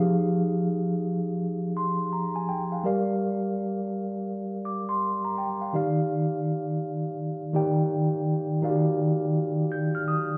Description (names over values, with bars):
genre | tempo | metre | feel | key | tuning
R&B | 83 BPM | 4/4 | swing 64% on 16ths | unclear | A4 = 440 Hz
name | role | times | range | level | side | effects
mellow tine electric piano | solo | 0.0-10.4 s | Eb3 to G6 | -27 LUFS | equal | none
room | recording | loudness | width
wet small room ambience, RT60 0.5 s | band playing live in one room | -27 LUFS | mono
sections
0.0-10.4 A section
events
none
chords
0.0 Fm9; 2.8 Gm7; 5.7 Ebmaj9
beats
0.66 1.39 2.11 | 2.83 3.56 4.28 5.00 | 5.72 6.45 7.17 7.89 | 8.62 9.34 10.06